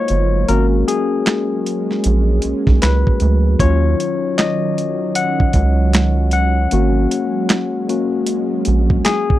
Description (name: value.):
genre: R&B, neo-soul.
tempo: 77 BPM.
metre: 4/4.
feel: swing 64% on 16ths.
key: unclear.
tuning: A4 = 436 Hz.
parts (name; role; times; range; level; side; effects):
barky tine electric piano; accompaniment; 0.0-9.4 s; F#3 to F#5; -18 LUFS; left 6 dB; overdrive.
warm analog pad; sustained chords; 0.0-9.4 s; D#3 to E#4; -24 LUFS; right 6 dB; chorus.
rubbery square bass; bass; 0.1-9.0 s; G1 to D#2; -15 LUFS; right 1 dB; none.
dusty soul sampler-style drum kit; drums; 0.1-9.4 s; handclaps, hi-hat, kick drum, snare drum; -17 LUFS; right 1 dB; none.
room: little or no reverb.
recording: dry, close 1970s-style studio recording.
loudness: -14 LUFS.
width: side -14 dB against mid.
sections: 0.0-9.4 A section.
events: tine electric piano solo 0.0-9.4.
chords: 0.5 G#7sus4; 3.6 D#m7; 6.7 G#7sus4.